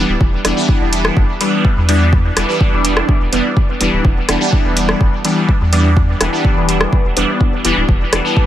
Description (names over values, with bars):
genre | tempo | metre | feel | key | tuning
dub techno | 125 BPM | 4/4 | straight | E minor | A4 = 440 Hz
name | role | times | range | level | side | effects
resonant sweep polysynth | stabs | 0.0-8.5 s | E3 to D4 | -15 LUFS | equal | chorus, phaser, cassette tape, sidechain pumping, dub echo
soft dub sub bass | bass | 0.0-8.2 s | D1 to E2 | -17 LUFS | equal | sidechain pumping
electronic kick drum | drums | 0.2-8.5 s | none | -14 LUFS | equal | none
soft vintage rhythm box | drums | 0.4-8.2 s | hi-hat, rim click | -19 LUFS | equal | overdrive
room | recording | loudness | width
light reverb, digital ambience | none | -12 LUFS | side -12 dB against mid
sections
0.0-8.5 A section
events
none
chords
0.0 Em7